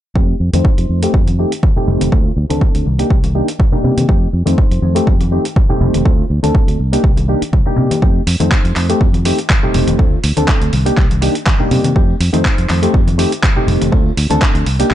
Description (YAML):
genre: filtered disco house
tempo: 122 BPM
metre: 4/4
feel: swing 54% on 16ths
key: F mixolydian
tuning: A4 = 440 Hz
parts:
  - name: reed electric piano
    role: accompaniment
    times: 0.2-14.9 s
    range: A3 to C5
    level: -18 LUFS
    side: equal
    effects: phaser, vintage 12-bit sampler grit, sidechain pumping, low-pass filter
  - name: fingered electric bass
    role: bass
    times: 0.2-14.9 s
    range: F1 to C3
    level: -16 LUFS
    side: equal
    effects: sidechain pumping, low-pass filter
  - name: electronic kick drum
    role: drums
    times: 0.2-14.5 s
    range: none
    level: -13 LUFS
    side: equal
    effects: small room ambience
  - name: tambourine and congas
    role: percussion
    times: 0.2-14.9 s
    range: none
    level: -23 LUFS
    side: left 3 dB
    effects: sidechain pumping on perc, low-pass filter on perc
  - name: dusty soul sampler-style drum kit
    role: drums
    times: 0.5-14.9 s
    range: handclaps, hi-hat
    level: -21 LUFS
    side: right 1 dB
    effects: overdrive, sidechain pumping on hats, small room ambience
room: digital ambience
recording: nothing above 10.4 kHz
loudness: -11 LUFS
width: side -12 dB against mid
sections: 0.2-14.9 A section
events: filter sweep 0.2-14.9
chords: 0.2 F7; 2.1 Dm7; 2.9 Cm7; 4.1 F7; 6.1 Dm7; 6.8 Cm7; 8.0 F7; 10.0 Dm7; 10.7 Cm7; 12.0 F7; 13.9 Dm7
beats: | 0.16 0.65 1.14 1.63 | 2.12 2.62 3.11 3.60 | 4.09 4.58 5.08 5.57 | 6.06 6.55 7.04 7.53 | 8.03 8.52 9.01 9.50 | 9.99 10.48 10.98 11.47 | 11.96 12.45 12.94 13.44 | 13.93 14.42 14.91